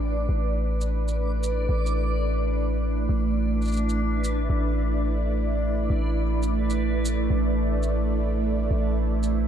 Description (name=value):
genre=half-time drum and bass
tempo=171 BPM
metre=4/4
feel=swing 56% on 16ths, half-time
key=A minor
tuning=A4 = 440 Hz
part: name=bowed-like drone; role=sustained chords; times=0.0-9.5 s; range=A3 to D5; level=-28 LUFS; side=right 3 dB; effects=built-in reverb, phaser
part: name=long sustained 808-style bass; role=bass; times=0.0-9.5 s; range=A1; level=-25 LUFS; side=equal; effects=none
part: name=backwards swelling texture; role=texture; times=0.0-9.5 s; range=C4 to D5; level=-33 LUFS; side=equal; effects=built-in reverb
part: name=shaker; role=drums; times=0.8-4.3, 6.4-9.3 s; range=none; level=-38 LUFS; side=right 4 dB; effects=none
room=light reverb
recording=dark, warm production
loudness=-22 LUFS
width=side -9 dB against mid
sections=0.0-9.5 A section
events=none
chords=0.0 Am